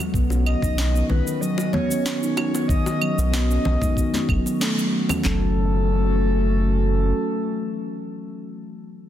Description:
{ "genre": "organic downtempo", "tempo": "94 BPM", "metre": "4/4", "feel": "straight", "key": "F# dorian", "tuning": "A4 = 440 Hz", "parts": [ { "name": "warbly tape-like pad", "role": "sustained chords", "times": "0.0-8.3 s", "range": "D#3 to F#4", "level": "-28 LUFS", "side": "equal", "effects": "chorus, built-in reverb, sidechain pumping" }, { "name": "electronic cabasa, claves and snare drum", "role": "drums", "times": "0.0-5.2 s", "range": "none", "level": "-29 LUFS", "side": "right 2 dB", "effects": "studio reverb" }, { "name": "steel tongue drum", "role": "arpeggios", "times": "0.1-5.5 s", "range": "D#3 to D#4", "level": "-26 LUFS", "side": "left 1 dB", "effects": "tape echo" }, { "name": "warm sub bass", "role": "bass", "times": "0.1-7.1 s", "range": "F#1 to B1", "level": "-21 LUFS", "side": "equal", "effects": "none" }, { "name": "afro-pop drum kit", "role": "drums", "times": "0.1-5.4 s", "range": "handclaps, kick drum, snare drum, toms", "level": "-23 LUFS", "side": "equal", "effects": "studio reverb" }, { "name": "bongos and congas", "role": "percussion", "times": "0.3-5.2 s", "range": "none", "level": "-29 LUFS", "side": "left 2 dB", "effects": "none" }, { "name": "breathy flute-like synth lead", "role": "melody", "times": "0.5-8.3 s", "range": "A4 to D#5", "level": "-29 LUFS", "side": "left 1 dB", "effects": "wide subtle chorus, tape echo" } ], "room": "light reverb", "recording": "dense, heavily limited modern master", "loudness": "-19 LUFS", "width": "side -11 dB against mid", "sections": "0.0-5.2 A section; 5.2-7.8 B section", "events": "band accent 4.6-4.9", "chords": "0.1 Badd9; 5.2 F#m7" }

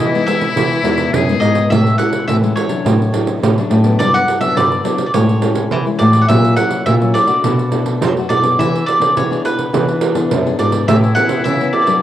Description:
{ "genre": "samba and choro", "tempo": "104 BPM", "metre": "4/4", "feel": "straight", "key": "A major", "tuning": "A4 = 441 Hz", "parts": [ { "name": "bowl-back mandolin", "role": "melody", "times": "0.0-12.0 s", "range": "B4 to F#5", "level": "-17 LUFS", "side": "equal", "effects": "none" }, { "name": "trumpet with metal mute", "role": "second line", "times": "0.0-1.7, 10.9-12.0 s", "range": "E4 to G#4", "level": "-21 LUFS", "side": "left 6 dB", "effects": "none" }, { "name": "nylon-string guitar", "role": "accompaniment", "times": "0.0-12.0 s", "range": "F#2 to G#4", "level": "-21 LUFS", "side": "left 7 dB", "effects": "none" }, { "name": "nylon-string guitar", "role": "bass", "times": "0.0-11.7 s", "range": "E2 to F#3", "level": "-16 LUFS", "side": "equal", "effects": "none" }, { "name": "pandeiro", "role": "percussion", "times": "0.0-12.0 s", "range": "none", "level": "-18 LUFS", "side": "right 6 dB", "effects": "none" } ], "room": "moderate spring reverb, RT60 1.6 s, studio reverb", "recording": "home recording on cassette", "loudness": "-12 LUFS", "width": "side -12 dB against mid", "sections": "0.0-1.7 A section; 1.7-12.0 B section", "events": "none", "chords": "0.0 Emaj7; 1.7 Amaj7; 2.9 Dmaj7/A; 4.0 Gmaj7; 5.1 Amaj7; 6.3 F#7/A#; 7.4 Bm7; 8.6 E7; 10.9 Aadd9" }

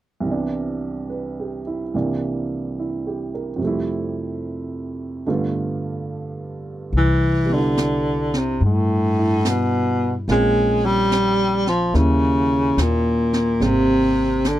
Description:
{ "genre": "jazz ballad", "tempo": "72 BPM", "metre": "4/4", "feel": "swing 66% on 8ths", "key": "C major", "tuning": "A4 = 440 Hz", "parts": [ { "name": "warm upright piano", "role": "accompaniment", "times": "0.2-14.6 s", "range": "C2 to B4", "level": "-25 LUFS", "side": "right 3 dB", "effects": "none" }, { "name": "upright bass", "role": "bass", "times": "6.9-14.6 s", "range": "Ab1 to G2", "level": "-22 LUFS", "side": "left 1 dB", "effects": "none" }, { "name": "jazz brush drum kit", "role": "drums", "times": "6.9-14.6 s", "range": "brushed snare drum, hi-hat, snare drum", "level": "-29 LUFS", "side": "right 1 dB", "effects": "none" }, { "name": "warm baritone saxophone", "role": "melody", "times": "7.0-14.6 s", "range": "A2 to Ab3", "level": "-18 LUFS", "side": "equal", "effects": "none" } ], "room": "little or no reverb", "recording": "dry, close 1970s-style studio recording", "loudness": "-18 LUFS", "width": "side -13 dB against mid", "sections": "0.3-6.9 A section; 6.9-14.6 B section", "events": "none", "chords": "0.3 Cmaj7; 1.9 C7; 3.6 Fmaj7; 5.3 G7; 6.9 Cmaj7; 10.3 Bbm; 11.9 Eb7b9; 13.6 Abmaj9" }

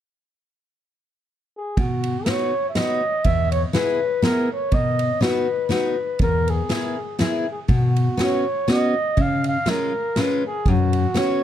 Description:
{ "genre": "alpine folk, alpine dance band", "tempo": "122 BPM", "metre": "3/4", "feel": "swing 55% on 8ths", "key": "B major", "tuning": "A4 = 440 Hz", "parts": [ { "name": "mellow flugelhorn", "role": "melody", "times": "1.6-11.4 s", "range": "F#4 to E#5", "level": "-23 LUFS", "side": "equal", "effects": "plate reverb, tape echo" }, { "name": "picked steel-string acoustic guitar", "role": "accompaniment", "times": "1.8-11.4 s", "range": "E2 to G#4", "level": "-21 LUFS", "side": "left 1 dB", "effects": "none" }, { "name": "street-band drum kit", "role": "drums", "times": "1.8-11.3 s", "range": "kick drum, ride cymbal, snare drum", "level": "-25 LUFS", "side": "right 1 dB", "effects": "none" } ], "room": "light reverb", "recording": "dark, warm production", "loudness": "-19 LUFS", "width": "side -10 dB against mid", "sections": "0.3-1.8 A section; 1.8-11.4 B section", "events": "none", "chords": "0.3 N.C.; 1.8 B; 3.3 E; 4.7 B; 6.2 E; 7.7 Bsus2; 9.2 C#; 10.7 F#sus4" }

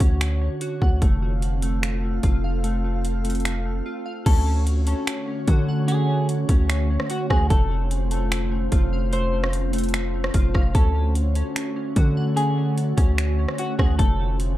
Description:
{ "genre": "hip hop, atmospheric cloud-rap", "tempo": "148 BPM", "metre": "4/4", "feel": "half-time", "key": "unclear", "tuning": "A4 = 440 Hz", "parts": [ { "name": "glassy FM pad", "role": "sustained chords", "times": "0.0-14.6 s", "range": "D3 to F5", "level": "-29 LUFS", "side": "equal", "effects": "ensemble chorus, built-in reverb" }, { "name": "glassy digital keys", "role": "arpeggios", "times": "0.0-14.6 s", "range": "A3 to F#5", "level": "-32 LUFS", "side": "left 1 dB", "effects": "chorus, tape echo" }, { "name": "long sustained 808-style bass", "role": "bass", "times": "0.0-14.6 s", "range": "F1 to D3", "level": "-22 LUFS", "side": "equal", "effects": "none" }, { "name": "trap drum kit", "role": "drums", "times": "0.0-14.5 s", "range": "crash cymbal, finger snaps, hi-hat, kick drum, rim click", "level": "-22 LUFS", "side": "equal", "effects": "none" }, { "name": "semi-hollow electric guitar", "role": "melody", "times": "4.3-14.4 s", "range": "F#4 to C5", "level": "-29 LUFS", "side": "equal", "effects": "analog chorus, tape echo" } ], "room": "light reverb", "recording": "none", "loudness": "-20 LUFS", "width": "side -15 dB against mid", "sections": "0.0-4.3 A section; 4.3-14.6 B section", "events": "break 3.9-4.3", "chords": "0.0 Dmaj7; 1.0 F; 4.3 Dmaj7; 7.5 F; 10.7 Dmaj7; 14.0 F" }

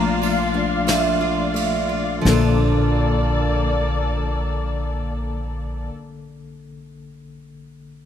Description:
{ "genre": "acoustic folk-pop ballad", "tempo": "43 BPM", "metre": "4/4", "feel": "straight", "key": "Bb major", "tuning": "A4 = 439 Hz", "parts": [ { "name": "direct-recorded clean electric guitar", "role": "melody", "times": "0.0-0.8 s", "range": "Bb5", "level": "-31 LUFS", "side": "right 3 dB", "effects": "tremolo" }, { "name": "tine electric piano", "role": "accompaniment", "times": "0.0-8.1 s", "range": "Bb1 to A4", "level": "-25 LUFS", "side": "left 6 dB", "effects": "medium tremolo" }, { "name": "muted studio string section", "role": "sustained chords", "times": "0.0-5.9 s", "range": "Bb3 to F5", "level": "-25 LUFS", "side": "left 3 dB", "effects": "none" }, { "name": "picked steel-string acoustic guitar", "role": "arpeggios", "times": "0.0-6.0 s", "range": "F3 to F4", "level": "-26 LUFS", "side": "right 8 dB", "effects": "none" }, { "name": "upright bass", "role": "bass", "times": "0.0-5.9 s", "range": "Bb1", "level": "-23 LUFS", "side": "equal", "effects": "none" }, { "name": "soft brush drum kit", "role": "drums", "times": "0.2-2.6 s", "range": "hi-hat, ride cymbal, snare drum", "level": "-28 LUFS", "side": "right 1 dB", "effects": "none" } ], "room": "small room ambience", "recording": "rough home demo mix", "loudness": "-18 LUFS", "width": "side -9 dB against mid", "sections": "0.0-2.3 A section; 2.3-7.9 B section", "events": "slowing down 0.0-2.3", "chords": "0.0 Bbmaj7" }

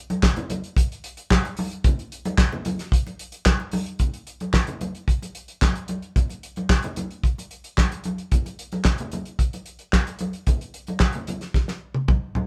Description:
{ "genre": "disco", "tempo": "111 BPM", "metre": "4/4", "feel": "straight", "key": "none", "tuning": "none", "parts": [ { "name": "damped 70s drum kit", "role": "drums", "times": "0.1-12.5 s", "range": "handclaps, hi-hat, kick drum, snare drum, toms", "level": "-23 LUFS", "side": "equal", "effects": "none" }, { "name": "congas", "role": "percussion", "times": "0.1-12.5 s", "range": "none", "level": "-33 LUFS", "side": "equal", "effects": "none" } ], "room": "little or no reverb", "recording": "band playing live in one room", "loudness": "-24 LUFS", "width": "mono", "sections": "0.0-4.0 A section; 4.0-12.5 B section", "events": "drum fill 11.6-12.5", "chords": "none" }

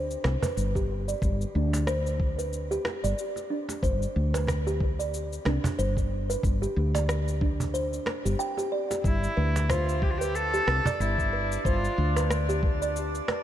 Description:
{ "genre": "organic downtempo", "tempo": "92 BPM", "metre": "4/4", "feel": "swing 57% on 16ths", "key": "G mixolydian", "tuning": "A4 = 440 Hz", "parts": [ { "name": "kalimba", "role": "arpeggios", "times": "0.0-13.4 s", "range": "D4 to G5", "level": "-31 LUFS", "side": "right 1 dB", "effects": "low-pass filter, ping-pong delay, shimmer reverb" }, { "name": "woody fretless electric bass", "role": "bass", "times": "0.0-13.2 s", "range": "G1 to D2", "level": "-28 LUFS", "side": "equal", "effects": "wide subtle chorus, sidechain pumping" }, { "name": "electronic cabasa and rim click", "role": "drums", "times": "0.1-13.4 s", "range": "none", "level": "-36 LUFS", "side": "equal", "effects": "overdrive" }, { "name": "cajon", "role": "percussion", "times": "0.2-13.4 s", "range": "none", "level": "-34 LUFS", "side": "right 2 dB", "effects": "none" }, { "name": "electronic kick drum", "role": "drums", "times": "0.8-12.8 s", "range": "none", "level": "-28 LUFS", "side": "equal", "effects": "none" }, { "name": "rich cello", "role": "melody", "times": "9.0-12.3 s", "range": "E4 to A4", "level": "-30 LUFS", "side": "equal", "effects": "ping-pong delay, shimmer reverb" }, { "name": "drifting glass-harmonics texture", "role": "texture", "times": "9.9-13.4 s", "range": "D4 to D5", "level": "-37 LUFS", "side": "right 1 dB", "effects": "chorus, built-in reverb, shimmer reverb" } ], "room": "light reverb", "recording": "dark, warm production", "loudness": "-25 LUFS", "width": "side -11 dB against mid", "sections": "0.0-13.4 A section", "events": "filter sweep on kalimba 0.0-13.4", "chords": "0.0 Gsus4; 6.4 Csus2/G (rootless); 9.0 Gadd11" }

